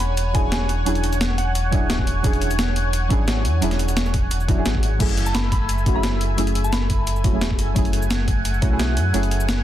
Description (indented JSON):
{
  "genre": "liquid drum and bass",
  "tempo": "174 BPM",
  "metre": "4/4",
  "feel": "straight",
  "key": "F# minor",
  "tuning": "A4 = 443 Hz",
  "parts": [
    { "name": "soft synth bell", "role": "melody", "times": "0.0-1.7, 5.3-7.2 s", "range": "F#5 to B5", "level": "-30 LUFS", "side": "left 1 dB", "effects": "chorus, ping-pong delay" },
    { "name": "deep mellow chord stab", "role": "accompaniment", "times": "0.0-9.6 s", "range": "F#3 to G#4", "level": "-27 LUFS", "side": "right 1 dB", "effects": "chorus, digital delay" },
    { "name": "lush unison pad", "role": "sustained chords", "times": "0.0-9.6 s", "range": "A3 to G#5", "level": "-29 LUFS", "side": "equal", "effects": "chorus, phaser, sidechain pumping" },
    { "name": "sub bass with octave", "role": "bass", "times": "0.0-9.6 s", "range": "D1 to F#2", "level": "-22 LUFS", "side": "equal", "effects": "none" },
    { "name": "breakbeat sampler-style drum kit", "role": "drums", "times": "0.0-9.6 s", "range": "crash cymbal, hi-hat, shaker, snare drum", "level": "-26 LUFS", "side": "left 1 dB", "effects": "overdrive" },
    { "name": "electronic kick drum", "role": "drums", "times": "0.3-8.7 s", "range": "none", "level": "-22 LUFS", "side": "equal", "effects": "overdrive" }
  ],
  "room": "little or no reverb",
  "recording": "dense, heavily limited modern master",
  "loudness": "-18 LUFS",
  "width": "side -12 dB against mid",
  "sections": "0.0-5.0 A section; 5.0-9.6 A section",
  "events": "drop 0.0-5.0, 5.0-9.6",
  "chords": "0.0 E13; 5.0 F#m9"
}